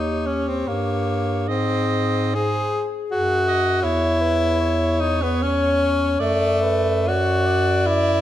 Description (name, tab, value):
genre	classical, lyrical piece for single-reed quartet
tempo	65-83 BPM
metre	3/4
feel	rubato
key	C# minor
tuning	A4 = 441 Hz
part	warm clarinet	melody	0.0-8.2 s	G4 to D5	-27 LUFS	left 7 dB	none
part	clear alto saxophone	second line	0.0-8.2 s	G#4 to D#5	-27 LUFS	right 7 dB	none
part	clear tenor saxophone	accompaniment	0.0-8.2 s	A3 to G#4	-21 LUFS	left 2 dB	none
part	dark bass clarinet	bass	0.0-8.2 s	D#2 to G#2	-24 LUFS	right 2 dB	none
room	moderate recital hall reverb, RT60 1.4 s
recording	close, detailed microphones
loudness	-18 LUFS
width	side -12 dB against mid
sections	0.0-8.2 A section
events	none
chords	0.0 D#7; 1.5 G#; 3.8 C#m/E; 6.2 D/F#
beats	0.67 | 1.48 2.35 3.11 | 3.84 4.61 5.43 | 6.21 7.08 7.87